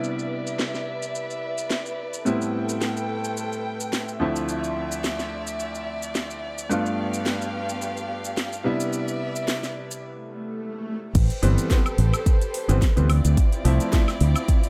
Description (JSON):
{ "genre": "nu-disco, nu disco", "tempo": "108 BPM", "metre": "4/4", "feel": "swing 55% on 16ths", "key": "A minor", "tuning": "A4 = 440 Hz", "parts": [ { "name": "bright baby grand piano", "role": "accompaniment", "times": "0.0-14.0 s", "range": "D2 to F4", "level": "-31 LUFS", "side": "equal", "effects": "sidechain pumping, low-pass filter, dub echo" }, { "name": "warm studio violin section", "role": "sustained chords", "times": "0.0-14.7 s", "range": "B3 to G5", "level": "-34 LUFS", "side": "equal", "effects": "sidechain pumping, low-pass filter" }, { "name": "house drum kit", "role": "drums", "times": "0.0-14.7 s", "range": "crash cymbal, hi-hat, shaker, snare drum, woodblock", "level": "-33 LUFS", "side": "equal", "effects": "low-pass filter on perc, low-pass filter on snare, low-pass filter on hats, low-pass filter on cymbals" }, { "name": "swell", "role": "sound effects", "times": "10.2-11.2 s", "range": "none", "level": "-35 LUFS", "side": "equal", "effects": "none" }, { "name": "fingered electric bass with an envelope filter", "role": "bass", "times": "11.2-14.3 s", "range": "G1 to D2", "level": "-21 LUFS", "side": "equal", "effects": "tube saturation" }, { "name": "electronic kick drum", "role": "drums", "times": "11.2-14.6 s", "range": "none", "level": "-22 LUFS", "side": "equal", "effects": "none" } ], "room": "light reverb", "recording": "echo-heavy mix", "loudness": "-25 LUFS", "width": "mono", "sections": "0.0-11.2 A section; 11.2-14.7 B section", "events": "break 10.0-11.2; swell 10.2-11.2; drop 11.2-14.7", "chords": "0.0 Cmaj9; 2.3 Am9; 4.2 Dm9; 6.7 G7; 8.7 Cmaj9; 11.2 Am9; 13.1 Dm9", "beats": "| 0.04 0.59 1.15 1.71 | 2.26 2.82 3.37 3.93 | 4.48 5.04 5.59 6.15 | 6.71 7.26 7.82 8.37 | 8.93 9.48 10.04 10.60 | 11.15 11.71 12.26 12.82 | 13.37 13.93 14.48" }